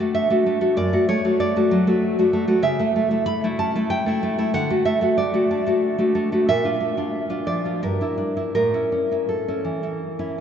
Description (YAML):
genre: romantic piece for solo classical guitar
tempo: 78-100 BPM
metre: 3/4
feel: rubato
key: unclear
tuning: A4 = 440 Hz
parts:
  - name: nylon-string guitar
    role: solo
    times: 0.0-10.4 s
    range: F#2 to B5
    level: -19 LUFS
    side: equal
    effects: none
room: wet cathedral reverb, RT60 7.0 s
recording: in a vast, echoing space, nothing above 7.8 kHz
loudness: -19 LUFS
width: side -8 dB against mid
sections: 0.0-10.4 A section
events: none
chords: 0.0 D; 0.8 D/F#; 2.6 A/C#; 4.5 D; 6.5 Bb (rootless); 7.8 Em7b5/G; 8.5 A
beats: 0.14 | 0.78 1.41 2.03 | 2.64 3.28 3.91 | 4.54 5.18 5.83 | 6.48 7.13 7.82 | 8.54 9.30 10.02